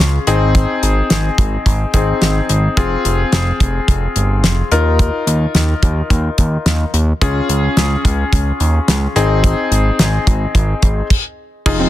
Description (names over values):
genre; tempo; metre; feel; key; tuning
synth-pop; 108 BPM; 4/4; straight; unclear; A4 = 441 Hz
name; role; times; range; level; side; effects
bright grand piano; accompaniment; 0.0-11.9 s; C4 to Bb4; -19 LUFS; left 4 dB; none
fat analog bass; bass; 0.0-11.9 s; F1 to Eb2; -16 LUFS; equal; none
damped 70s drum kit; drums; 0.3-11.8 s; crash cymbal, hi-hat, kick drum, snare drum; -15 LUFS; equal; none
warm analog pad; sustained chords; 11.7-11.9 s; C3 to F4; -20 LUFS; right 2 dB; chorus
wide unison pluck; arpeggios; 11.7-11.9 s; C4 to Eb4; -18 LUFS; right 2 dB; none
room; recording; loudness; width
small room ambience; dense, heavily limited modern master; -12 LUFS; side -14 dB against mid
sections
0.0-11.7 A section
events
stop 11.1-11.7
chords
0.3 Ab; 2.8 Fm; 4.7 Ebsus2; 7.2 Db; 9.2 Ab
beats
| 0.55 1.10 1.66 2.21 | 2.77 3.33 3.88 4.44 | 4.99 5.55 6.10 6.66 | 7.21 7.77 8.33 8.88 | 9.44 9.99 10.55 11.10 | 11.66